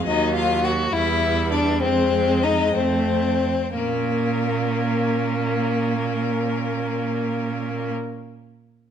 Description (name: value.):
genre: quick classical-period movement for string quartet.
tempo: 58-69 BPM (dotted quarters).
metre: 6/8.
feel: rubato.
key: Bb minor.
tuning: A4 = 440 Hz.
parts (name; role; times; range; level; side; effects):
rich violin; melody; 0.0-7.9 s; Bb4 to Gb5; -28 LUFS; left 9 dB; none.
clear viola; accompaniment; 0.0-7.9 s; Gb3 to Db4; -27 LUFS; right 2 dB; none.
clear cello; bass; 0.0-7.9 s; Eb2 to Bb2; -25 LUFS; right 6 dB; none.
rich violin; second line; 0.1-7.9 s; Bb3 to Gb4; -23 LUFS; left 4 dB; none.
room: moderate stone room reverb, RT60 1.2 s.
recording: none.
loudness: -20 LUFS.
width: side -8 dB against mid.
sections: 0.0-3.8 A section; 3.8-7.6 B section.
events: slowing down 0.0-3.8.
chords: 0.1 Ebm; 0.9 Em7; 1.8 F5; 2.8 F; 3.8 Bbm.